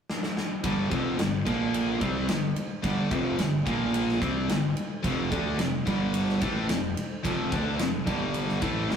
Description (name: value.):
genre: hard rock.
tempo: 109 BPM.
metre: 4/4.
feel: straight.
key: unclear.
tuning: A4 = 439 Hz.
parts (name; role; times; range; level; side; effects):
huge arena drum kit; drums; 0.1-9.0 s; kick drum, ride cymbal, snare drum; -31 LUFS; equal; none.
distorted electric guitar; riff; 0.6-9.0 s; F2 to D4; -28 LUFS; right 2 dB; distortion.
high-gain distorted guitar; riff; 0.6-9.0 s; F2 to D4; -32 LUFS; left 4 dB; distortion.
fuzz fingered electric bass; bass; 0.6-9.0 s; F1 to D2; -36 LUFS; equal; overdrive.
room: wet small room reverb, RT60 0.5 s.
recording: rough rehearsal-room recording.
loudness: -25 LUFS.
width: side -7 dB against mid.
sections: 0.6-9.0 A section.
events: drum fill 0.1-0.6.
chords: 0.0 N.C.; 0.6 G5; 1.5 Bb5; 2.0 G5; 3.7 Bb5; 4.2 G5; 5.0 F5; 5.9 G5; 6.4 F5; 8.1 G5; 8.6 A5.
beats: 0.08 | 0.63 1.18 1.74 2.29 | 2.84 3.39 3.94 4.49 | 5.04 5.59 6.14 6.69 | 7.25 7.80 8.35 8.90.